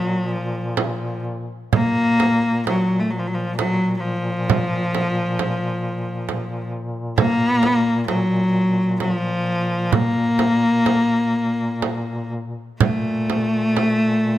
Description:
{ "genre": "caucasian folk, Caucasian lament", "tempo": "61-68 BPM", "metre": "3/4", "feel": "rubato", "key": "unclear", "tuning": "A4 = 440 Hz", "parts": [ { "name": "rich cello", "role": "melody", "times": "0.0-14.4 s", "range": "F3 to Bb3", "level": "-19 LUFS", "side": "left 1 dB", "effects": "none" }, { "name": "mellow duduk", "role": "drone", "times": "0.0-14.4 s", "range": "Bb2", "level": "-28 LUFS", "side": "left 1 dB", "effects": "none" }, { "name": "frame drum", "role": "percussion", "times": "0.8-14.0 s", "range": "none", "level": "-22 LUFS", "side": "right 6 dB", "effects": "none" } ], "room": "moderate concert hall reverb, RT60 2.0 s", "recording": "close, detailed microphones", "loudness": "-18 LUFS", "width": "side -13 dB against mid", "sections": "0.0-12.8 A section; 12.8-14.4 B section", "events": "none", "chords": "none", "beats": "0.77 | 1.73 2.67 3.59 | 4.50 5.39 6.28 | 7.18 8.09 9.01 | 9.93 10.86 11.82 | 12.80 13.77" }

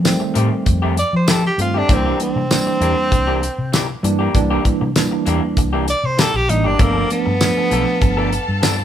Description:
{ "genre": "straight-eighth soul blues", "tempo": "98 BPM", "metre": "4/4", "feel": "straight", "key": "C mixolydian", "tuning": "A4 = 440 Hz", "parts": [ { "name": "tine electric piano", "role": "accompaniment", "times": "0.0-8.3 s", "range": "Eb3 to D4", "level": "-20 LUFS", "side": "right 4 dB", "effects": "fast stereo tremolo" }, { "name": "vintage muted fingered electric bass", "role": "bass", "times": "0.0-8.8 s", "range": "G1 to F3", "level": "-20 LUFS", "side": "left 1 dB", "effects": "none" }, { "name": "damped 70s drum kit", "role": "drums", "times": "0.1-8.8 s", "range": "hi-hat, kick drum, snare drum, tambourine", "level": "-18 LUFS", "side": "left 1 dB", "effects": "none" }, { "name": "electric guitar through a small old amp", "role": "stabs", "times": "0.2-8.8 s", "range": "Eb3 to A4", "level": "-25 LUFS", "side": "left 4 dB", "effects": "none" }, { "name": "clear tenor saxophone", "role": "melody", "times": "1.0-8.8 s", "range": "Bb3 to D5", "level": "-20 LUFS", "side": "equal", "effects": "none" }, { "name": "warm studio string section", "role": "sustained chords", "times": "6.8-8.8 s", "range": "A4 to A5", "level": "-27 LUFS", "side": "left 1 dB", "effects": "none" } ], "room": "moderate studio reverb, RT60 0.9 s", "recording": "band playing live in one room", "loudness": "-15 LUFS", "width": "side -10 dB against mid", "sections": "0.0-8.8 A section", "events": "none", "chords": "0.0 F9; 1.9 C9; 6.8 G9", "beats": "0.05 0.66 1.28 | 1.89 2.50 3.12 3.73 | 4.34 4.96 5.57 6.18 | 6.79 7.41 8.02 8.63" }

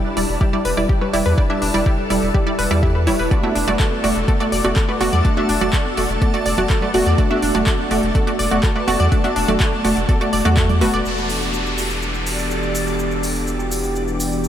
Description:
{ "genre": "progressive house", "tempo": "124 BPM", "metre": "4/4", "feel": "straight", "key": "E minor", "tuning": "A4 = 441 Hz", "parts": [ { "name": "wide unison pluck", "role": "stabs", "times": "0.0-10.9 s", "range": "G3 to E5", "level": "-21 LUFS", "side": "right 1 dB", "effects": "sidechain pumping, tape echo" }, { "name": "backwards swelling texture", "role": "texture", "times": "0.0-14.5 s", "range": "A4 to D6", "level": "-30 LUFS", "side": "left 2 dB", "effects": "built-in reverb, analog chorus, sidechain pumping" }, { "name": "saturated sub bass", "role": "bass", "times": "0.2-14.5 s", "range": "E1 to E2", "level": "-22 LUFS", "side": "equal", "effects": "sidechain pumping" }, { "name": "deep house drum kit", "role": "drums", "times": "0.2-14.5 s", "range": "handclaps, hi-hat, shaker", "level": "-28 LUFS", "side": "equal", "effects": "studio reverb" }, { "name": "analog pluck", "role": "arpeggios", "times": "0.4-11.0 s", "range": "D4 to D5", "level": "-23 LUFS", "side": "equal", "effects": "chorus, sidechain pumping, tape echo" }, { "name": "electronic kick drum", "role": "drums", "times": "0.4-10.7 s", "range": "none", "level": "-18 LUFS", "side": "equal", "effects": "studio reverb" }, { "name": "congas", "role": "percussion", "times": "3.4-10.9 s", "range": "none", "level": "-30 LUFS", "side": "right 2 dB", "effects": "none" }, { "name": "warm analog pad", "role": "sustained chords", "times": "11.1-14.5 s", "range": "E3 to G4", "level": "-24 LUFS", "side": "equal", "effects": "chorus, sidechain pumping" }, { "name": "downlifter", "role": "sound effects", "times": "11.1-14.5 s", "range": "none", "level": "-27 LUFS", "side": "equal", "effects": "none" } ], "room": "moderate huge ambient reverb, RT60 6.7 s", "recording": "dreamy mix soaked in reverb", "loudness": "-16 LUFS", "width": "side -10 dB against mid", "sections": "0.0-11.1 A section; 11.1-14.5 B section", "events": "none", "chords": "0.0 Em7; 3.3 D/E; 11.1 Em7", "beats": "0.41 0.89 | 1.38 1.86 2.35 2.83 | 3.31 3.80 4.28 4.76 | 5.25 5.73 6.22 6.70 | 7.18 7.67 8.15 8.64 | 9.12 9.60 10.09 10.57 | 11.05 11.54 12.02 12.51 | 12.99 13.47 13.96 14.44" }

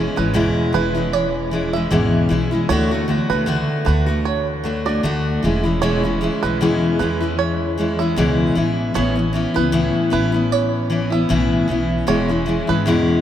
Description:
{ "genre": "acoustic pop", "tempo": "77 BPM", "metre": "4/4", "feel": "swing 55% on 16ths", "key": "E mixolydian", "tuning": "A4 = 444 Hz", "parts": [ { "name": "picked steel-string acoustic guitar", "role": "accompaniment", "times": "0.0-13.2 s", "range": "E2 to F#4", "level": "-18 LUFS", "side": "left 1 dB", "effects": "none" }, { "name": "upright bass", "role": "bass", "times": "0.0-13.0 s", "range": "E1 to E2", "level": "-24 LUFS", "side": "right 1 dB", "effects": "none" }, { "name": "bluegrass banjo", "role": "arpeggios", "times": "0.2-12.9 s", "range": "B4 to E5", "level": "-25 LUFS", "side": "right 6 dB", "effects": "none" } ], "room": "wet cathedral reverb, RT60 5.7 s", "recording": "in a vast, echoing space", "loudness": "-16 LUFS", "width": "side -10 dB against mid", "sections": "0.0-13.2 A section", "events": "none", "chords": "0.0 E6; 2.7 D; 5.4 E6; 8.6 Aadd9; 12.1 E6", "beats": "0.35 1.13 1.91 | 2.69 3.48 4.26 5.04 | 5.82 6.60 7.38 8.17 | 8.95 9.73 10.51 11.29 | 12.08 12.86" }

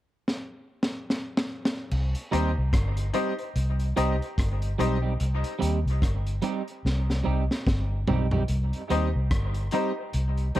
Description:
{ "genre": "dub reggae", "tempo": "73 BPM", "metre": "4/4", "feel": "swing 59% on 16ths", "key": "C minor", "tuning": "A4 = 440 Hz", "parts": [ { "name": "crunchy breakbeat drum kit", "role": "drums", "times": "0.3-10.6 s", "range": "crash cymbal, hi-hat, kick drum, rim click, snare drum, toms", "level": "-29 LUFS", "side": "equal", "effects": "none" }, { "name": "vintage muted fingered electric bass", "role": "bass", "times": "1.9-10.6 s", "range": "G1 to Eb2", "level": "-25 LUFS", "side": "equal", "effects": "none" }, { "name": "clean electric guitar", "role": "accompaniment", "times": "2.3-10.6 s", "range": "G3 to G4", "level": "-31 LUFS", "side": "right 5 dB", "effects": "analog chorus, dub echo" }, { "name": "bright upright piano", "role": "stabs", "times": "2.3-10.6 s", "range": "Eb4 to Eb5", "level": "-32 LUFS", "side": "left 5 dB", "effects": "dub echo" } ], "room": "light reverb", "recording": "none", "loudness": "-24 LUFS", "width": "side -14 dB against mid", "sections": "0.0-1.9 A section; 1.9-8.5 B section; 8.5-10.6 C section", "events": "drum fill 0.3-1.9, 6.8-8.5", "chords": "0.0 N.C.; 1.9 Cm", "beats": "0.27 1.09 | 1.91 2.73 3.56 4.38 | 5.20 6.03 6.85 7.67 | 8.49 9.32 10.14" }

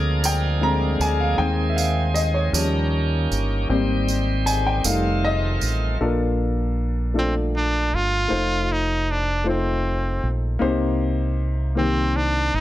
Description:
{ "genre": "slow gospel", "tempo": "52 BPM (dotted quarters)", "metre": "6/8", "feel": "straight", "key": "Ab major, Bb major from 6.0 s", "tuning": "A4 = 444 Hz", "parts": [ { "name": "warm grand piano", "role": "accompaniment", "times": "0.0-12.6 s", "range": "Bb2 to Bb5", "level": "-24 LUFS", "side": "left 2 dB", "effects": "none" }, { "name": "bright tonewheel organ", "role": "sustained chords", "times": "0.0-6.0 s", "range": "Eb3 to Ab4", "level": "-28 LUFS", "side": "right 2 dB", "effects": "fast rotary speaker, overdrive" }, { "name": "deep dub fingered electric bass", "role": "bass", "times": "0.0-12.6 s", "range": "F1 to Eb2", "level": "-23 LUFS", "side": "equal", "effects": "none" }, { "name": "tambourine", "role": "percussion", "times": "0.2-6.0 s", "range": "none", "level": "-27 LUFS", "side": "right 6 dB", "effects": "none" }, { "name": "brilliant trumpet", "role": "melody", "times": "7.2-12.6 s", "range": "C4 to F4", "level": "-23 LUFS", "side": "right 1 dB", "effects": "none" } ], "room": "light reverb", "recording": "none", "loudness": "-19 LUFS", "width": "side -14 dB against mid", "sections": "0.0-6.0 A section; 6.0-12.6 B section", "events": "grand piano solo 0.0-6.0", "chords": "0.0 Bb7/D; 1.4 Ab/Eb; 2.5 Eb7; 3.7 Abmaj7; 4.8 F7; 6.0 Bbmaj7; 8.3 F7; 10.6 Cm7", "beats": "0.24 | 1.39 2.54 | 3.69 4.84 | 6.00 7.15 | 8.30 9.46 | 10.61 11.77" }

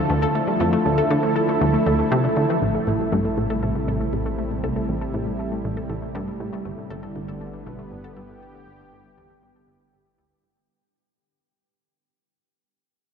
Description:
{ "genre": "ambient, sequencer-driven space music", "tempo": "119 BPM", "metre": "4/4", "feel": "straight", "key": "A minor", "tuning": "A4 = 441 Hz", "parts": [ { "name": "lush unison pad", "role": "sustained chords", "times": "0.0-10.7 s", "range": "C3 to A4", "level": "-24 LUFS", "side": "right 1 dB", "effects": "chorus" }, { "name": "wide unison pluck", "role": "arpeggios", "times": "0.0-10.6 s", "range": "A2 to A4", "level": "-29 LUFS", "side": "left 3 dB", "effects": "auto-pan, ping-pong delay" }, { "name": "plucky analog bass", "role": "riff", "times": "0.1-10.7 s", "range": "G1 to D3", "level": "-25 LUFS", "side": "equal", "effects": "ping-pong delay" }, { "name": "warm sub bass", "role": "bass", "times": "2.6-10.7 s", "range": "G1 to A1", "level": "-35 LUFS", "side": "equal", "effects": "none" } ], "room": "wet huge ambient reverb, RT60 8.4 s", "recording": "dark, warm production", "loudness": "-20 LUFS", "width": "side -7 dB against mid", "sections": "0.0-2.6 A section; 2.6-10.7 B section", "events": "fade-out on analog synth bass 2.6-10.7; fade-out on synth arpeggio sound 2.6-10.7; fade-out on sub bass 2.6-10.7; fade-out 2.6-10.7", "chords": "0.0 Dmadd9; 2.6 Am7; 6.7 G6", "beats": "0.10 | 0.60 1.10 1.61 2.11 | 2.62 3.12 3.63 4.13 | 4.63 5.14 5.64 6.15 | 6.65 7.16 7.66 8.16 | 8.67 9.17 9.68 10.18" }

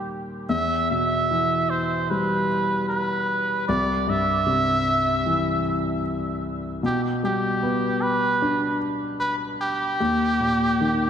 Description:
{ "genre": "pop", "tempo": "76 BPM", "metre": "4/4", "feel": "straight", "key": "G major", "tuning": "A4 = 438 Hz", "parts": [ { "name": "trumpet with cup mute", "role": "melody", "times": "0.0-11.1 s", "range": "G4 to E5", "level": "-23 LUFS", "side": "right 2 dB", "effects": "tape echo" }, { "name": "warm grand piano", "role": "accompaniment", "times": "0.0-11.1 s", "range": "C2 to D4", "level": "-24 LUFS", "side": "left 2 dB", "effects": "none" } ], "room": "wet lush hall reverb, RT60 2.7 s", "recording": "dreamy mix soaked in reverb", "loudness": "-21 LUFS", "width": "side -8 dB against mid", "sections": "0.0-11.1 A section", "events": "none", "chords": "0.5 Em; 3.7 C; 6.8 G/B; 10.0 Eb", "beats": "| 0.49 1.29 2.09 2.88 | 3.68 4.47 5.26 6.05 | 6.84 7.62 8.42 9.21 | 10.00 10.80" }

